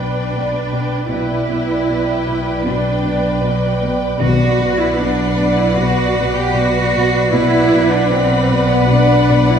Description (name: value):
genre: cinematic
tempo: 77 BPM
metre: 4/4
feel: straight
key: B phrygian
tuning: A4 = 440 Hz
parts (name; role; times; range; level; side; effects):
- clear studio violin section; melody; 0.0-9.6 s; F#5 to G5; -26 LUFS; left 3 dB; none
- clear studio violin section; second line; 0.0-9.6 s; D5; -20 LUFS; equal; none
- clear studio viola section; accompaniment; 0.0-9.6 s; B4; -23 LUFS; left 1 dB; none
- clear studio cello section; riff; 0.0-9.5 s; B2; -22 LUFS; equal; none
- clear studio cello section; bass; 0.0-9.6 s; F#3 to G4; -18 LUFS; right 2 dB; none
- rich studio double bass section; bass; 0.0-9.6 s; B1; -19 LUFS; equal; none
- timpani; percussion; 4.2-5.3 s; B2; -22 LUFS; left 2 dB; none
- clear studio violin section; texture; 4.2-9.6 s; B6 to C7; -31 LUFS; left 2 dB; none
room: wet scoring stage reverb, RT60 1.6 s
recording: heard from further back in the room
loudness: -13 LUFS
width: side -8 dB against mid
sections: 0.0-9.6 A section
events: none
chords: 0.0 G/B; 4.2 Bm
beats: 0.34 | 1.11 1.88 2.66 3.44 | 4.22 5.00 5.78 6.55 | 7.33 8.12 8.91